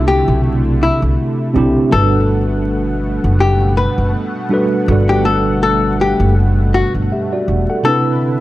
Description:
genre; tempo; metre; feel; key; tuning
lo-fi hip hop; 81 BPM; 4/4; swing 56% on 16ths; unclear; A4 = 440 Hz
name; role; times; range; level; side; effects
archtop guitar, miked and amplified; melody; 0.0-8.4 s; E4 to B4; -17 LUFS; left 3 dB; low-pass filter
tine electric piano; accompaniment; 0.0-8.4 s; C3 to F#5; -17 LUFS; right 1 dB; medium stereo tremolo, low-pass filter
warm analog pad; sustained chords; 0.0-8.4 s; B2 to F#5; -23 LUFS; left 1 dB; chorus, low-pass filter
upright bass; bass; 0.0-7.6 s; E1 to C2; -16 LUFS; equal; none
room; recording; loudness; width
light reverb, digital ambience; vinyl crackle; -12 LUFS; side -16 dB against mid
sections
0.0-8.4 A section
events
none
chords
0.0 Cmaj9; 1.9 Gmaj9; 7.8 Cmaj9

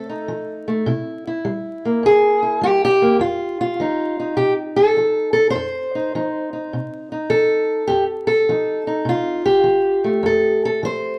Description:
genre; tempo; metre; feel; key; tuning
acoustic country blues, solo or duo; 103 BPM; 4/4; swing 66% on 8ths; F mixolydian; A4 = 440 Hz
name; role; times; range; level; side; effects
fingerpicked steel-string acoustic guitar; solo; 0.0-11.2 s; F2 to C5; -19 LUFS; equal; none
room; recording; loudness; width
wet large studio reverb, RT60 0.8 s; band playing live in one room, vinyl crackle; -19 LUFS; mono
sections
0.0-3.2 A section; 3.2-11.2 B section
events
steel-string acoustic guitar solo 0.0-3.2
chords
0.0 F7; 0.9 C7; 3.2 F7

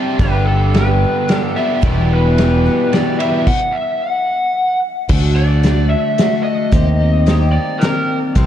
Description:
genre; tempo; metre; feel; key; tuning
folk rock and heartland rock; 110 BPM; 3/4; straight; unclear; A4 = 437 Hz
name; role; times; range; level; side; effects
lead guitar through a small cranked amp; melody; 0.0-8.2 s; A4 to F#5; -19 LUFS; equal; overdrive, analog delay
picked twelve-string acoustic guitar; accompaniment; 0.0-8.5 s; E2 to G4; -20 LUFS; left 2 dB; none
crunchy overdriven guitar; riff; 0.0-3.5 s; E2 to G4; -20 LUFS; right 2 dB; none
modern bright fingered electric bass; bass; 0.2-8.5 s; E1 to Eb2; -14 LUFS; equal; none
natural country drum kit; drums; 0.2-8.5 s; crash cymbal, hi-hat, kick drum, ride cymbal, snare drum; -19 LUFS; equal; none
room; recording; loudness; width
moderate church reverb, RT60 3.1 s; dreamy mix soaked in reverb, cassette tape; -13 LUFS; side -10 dB against mid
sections
0.0-5.1 A section; 5.1-8.5 B section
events
stop 3.5-5.1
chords
0.2 G; 1.8 Em; 3.5 N.C.; 5.1 D; 6.7 Eb6

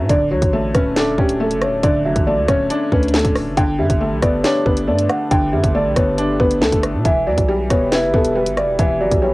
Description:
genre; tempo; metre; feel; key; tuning
hip hop, drill; 138 BPM; 4/4; half-time; unclear; A4 = 439 Hz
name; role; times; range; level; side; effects
felt-muted upright piano; accompaniment; 0.0-9.3 s; F#2 to E4; -19 LUFS; equal; cassette tape
long sustained 808-style bass; bass; 0.0-9.3 s; D1 to B2; -24 LUFS; equal; none
dark concert grand piano; melody; 0.1-9.3 s; G4 to G5; -20 LUFS; equal; cassette tape
drill drum kit; drums; 0.1-9.2 s; hi-hat, kick drum, rim click, snare drum; -18 LUFS; equal; cassette tape
room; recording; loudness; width
moderate small room reverb, RT60 0.5 s; home recording on cassette; -14 LUFS; side -20 dB against mid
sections
0.0-9.3 A section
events
none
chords
0.1 Dmaj7; 3.6 Gadd9; 7.0 Emadd9

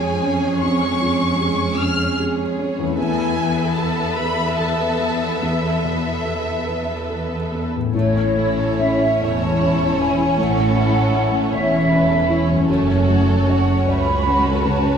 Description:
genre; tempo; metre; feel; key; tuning
cinematic, emotional film score for orchestra; 47-53 BPM (dotted quarters); 6/8; rubato; unclear; A4 = 440 Hz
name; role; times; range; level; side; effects
dark symphonic violin section; melody; 0.0-15.0 s; A4 to E#6; -26 LUFS; left 2 dB; none
warm symphonic violin section; second line; 0.0-15.0 s; A3 to E5; -26 LUFS; left 1 dB; none
felt-muted upright piano; accompaniment; 0.0-15.0 s; E2 to C#5; -24 LUFS; left 1 dB; none
warm symphonic viola section; accompaniment; 0.0-15.0 s; G#3 to A4; -25 LUFS; right 2 dB; none
concert harp; arpeggios; 0.0-15.0 s; E2 to C#5; -28 LUFS; left 7 dB; none
warm symphonic cello section; bass; 0.0-14.8 s; C#2 to A2; -23 LUFS; right 2 dB; none
mellow hollow flute section; second line; 7.9-15.0 s; C#5 to B5; -22 LUFS; right 1 dB; none
warm symphonic double bass section; bass; 7.9-14.8 s; E1 to C#2; -24 LUFS; right 2 dB; none
room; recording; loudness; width
wet scoring stage reverb, RT60 1.8 s; minimal, uncompressed stereo recording; -16 LUFS; side -7 dB against mid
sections
0.0-7.9 A section; 7.9-15.0 A section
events
none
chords
0.0 C#/E#; 3.0 Esus4; 7.9 A; 12.7 F#m

